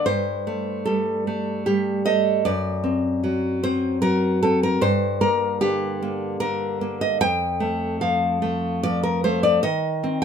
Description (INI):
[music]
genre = romantic piece for solo classical guitar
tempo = 75 BPM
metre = 3/4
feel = rubato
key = G minor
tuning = A4 = 445 Hz
[part]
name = nylon-string guitar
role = solo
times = 0.0-10.2 s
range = F2 to G5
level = -20 LUFS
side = equal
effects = none
[sound]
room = light reverb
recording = minimal, uncompressed stereo recording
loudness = -20 LUFS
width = side -7 dB against mid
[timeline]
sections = 0.0-10.2 A section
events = none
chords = 0.1 Gsus24; 2.4 D7/F#; 4.8 Gm; 7.2 F69; 9.6 Cm/Eb